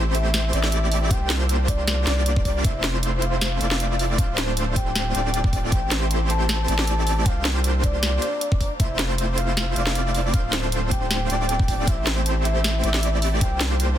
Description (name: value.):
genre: future bass.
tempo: 156 BPM.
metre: 4/4.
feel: swing 55% on 16ths, half-time.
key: F major.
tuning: A4 = 438 Hz.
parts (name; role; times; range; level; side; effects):
ethereal airy pad; sustained chords; 0.0-14.0 s; C5 to E6; -36 LUFS; equal; ensemble chorus, built-in reverb, tremolo, sidechain pumping.
airy dreamy lead; arpeggios; 0.0-14.0 s; C5 to D5; -33 LUFS; right 1 dB; chorus, sidechain pumping, dub echo.
supersaw chords; riff; 0.0-14.0 s; A3 to D5; -27 LUFS; right 1 dB; cassette tape, sidechain pumping.
saturated sub bass; bass; 0.0-14.0 s; D1 to C2; -24 LUFS; equal; sidechain pumping.
soft octave-layered synth lead; melody; 0.1-13.6 s; D5 to A5; -30 LUFS; left 2 dB; chorus, tremolo, sidechain pumping, ping-pong delay.
trap drum kit; drums; 0.1-13.9 s; hi-hat, snare drum; -26 LUFS; equal; small room ambience.
electronic kick drum; drums; 1.1-13.5 s; none; -22 LUFS; equal; small room ambience.
room: little or no reverb.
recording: dense, heavily limited modern master.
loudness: -20 LUFS.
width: side -11 dB against mid.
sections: 0.0-14.0 A section.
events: none.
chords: 0.0 Am7; 1.1 C9sus4; 2.6 Fmaj7; 4.2 Dm7; 5.7 Am7; 7.3 C9sus4; 8.8 Fmaj7; 10.3 Dm7; 11.9 Am7; 13.4 C9sus4.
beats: 0.34 0.72 | 1.11 1.49 1.88 2.26 | 2.65 3.03 3.41 3.80 | 4.18 4.57 4.95 5.34 | 5.72 6.11 6.49 6.88 | 7.26 7.64 8.03 8.41 | 8.80 9.18 9.57 9.95 | 10.34 10.72 11.11 11.49 | 11.88 12.26 12.64 13.03 | 13.41 13.80.